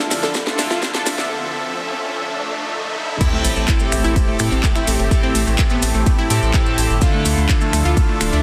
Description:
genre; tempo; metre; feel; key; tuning
progressive house; 126 BPM; 4/4; straight; A minor; A4 = 440 Hz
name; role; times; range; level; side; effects
supersaw pad; sustained chords; 0.0-8.4 s; D2 to E5; -29 LUFS; equal; sidechain pumping
unison pluck; arpeggios; 0.0-8.4 s; A3 to A4; -27 LUFS; equal; sidechain pumping, digital delay
chorused polysynth; stabs; 0.0-8.4 s; A2 to A4; -25 LUFS; equal; sidechain pumping, digital delay
riser, swell and sub drop; sound effects; 0.0-5.1 s; none; -30 LUFS; equal; none
house drum kit; drums; 0.1-8.3 s; crash cymbal, finger snaps, handclaps, hi-hat, ride cymbal, snare drum; -26 LUFS; equal; sidechain pumping on hats, sidechain pumping on cymbals
maracas; percussion; 0.1-8.4 s; none; -32 LUFS; equal; none
electronic kick drum; drums; 0.3-8.1 s; none; -19 LUFS; equal; high-pass filter on kick
congas; percussion; 0.5-0.6 s; none; -36 LUFS; equal; none
round analog bass; bass; 3.4-8.4 s; D1 to A2; -21 LUFS; equal; sidechain pumping
room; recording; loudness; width
light reverb, digital ambience; dense, heavily limited modern master, high-pass filter; -18 LUFS; mono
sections
0.0-3.2 A section; 3.2-8.4 B section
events
build-up 0.0-3.2; drum fill 0.0-1.3; riser 0.0-3.2; filter sweep on analog polysynth 0.0-3.2; break 1.3-3.2; swell 2.3-3.2; drop 3.2-8.4; impact 3.2-5.1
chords
0.0 Dmadd9; 3.2 Am7; 7.0 Dmadd9

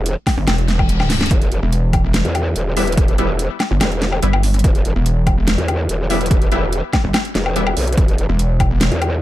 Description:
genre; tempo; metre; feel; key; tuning
heavy wobble dubstep; 144 BPM; 4/4; half-time; E minor; A4 = 440 Hz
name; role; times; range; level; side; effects
growl bass; bass; 0.0-9.2 s; E1 to E2; -19 LUFS; equal; chorus, overdrive
dubstep drum kit; drums; 0.1-9.1 s; hi-hat, snare drum, woodblock; -21 LUFS; left 1 dB; none
electronic kick drum; drums; 0.3-8.7 s; none; -17 LUFS; equal; overdrive
pulsing pluck wobble bass; bass; 0.4-8.9 s; E1 to G1; -16 LUFS; equal; chorus, overdrive
reverse cymbal; sound effects; 0.6-1.3 s; none; -28 LUFS; left 5 dB; none
orchestra-hit-like synth stab; stabs; 2.8-7.7 s; G3 to E4; -23 LUFS; left 2 dB; built-in reverb, ping-pong delay
room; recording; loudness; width
little or no reverb; dark, warm production; -14 LUFS; side -15 dB against mid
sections
0.0-9.2 A section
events
reverse cymbal 0.6-1.3; drum fill 1.0-1.3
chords
0.0 Em

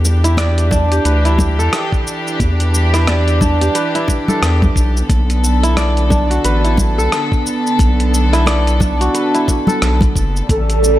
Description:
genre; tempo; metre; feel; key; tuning
organic downtempo; 89 BPM; 4/4; swing 59% on 16ths; E minor; A4 = 440 Hz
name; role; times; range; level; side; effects
rich studio string section; sustained chords; 0.0-11.0 s; C#3 to A4; -20 LUFS; equal; sidechain pumping
kora; arpeggios; 0.0-11.0 s; D4 to D5; -20 LUFS; right 1 dB; digital delay
round analog bass; bass; 0.0-11.0 s; F#1 to E2; -14 LUFS; equal; none
dusty soul sampler-style drum kit; drums; 0.0-11.0 s; hi-hat, rim click, shaker; -22 LUFS; equal; none
bongos and congas; percussion; 0.0-11.0 s; none; -21 LUFS; left 1 dB; none
electronic kick drum; drums; 0.7-10.7 s; none; -16 LUFS; equal; none
breathy flute-like synth lead; melody; 10.5-11.0 s; A4; -14 LUFS; right 3 dB; tremolo, ensemble chorus
room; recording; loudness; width
light reverb; none; -12 LUFS; side -14 dB against mid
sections
0.0-11.0 A section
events
none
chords
0.0 Em7; 5.1 Bm7; 10.5 A7

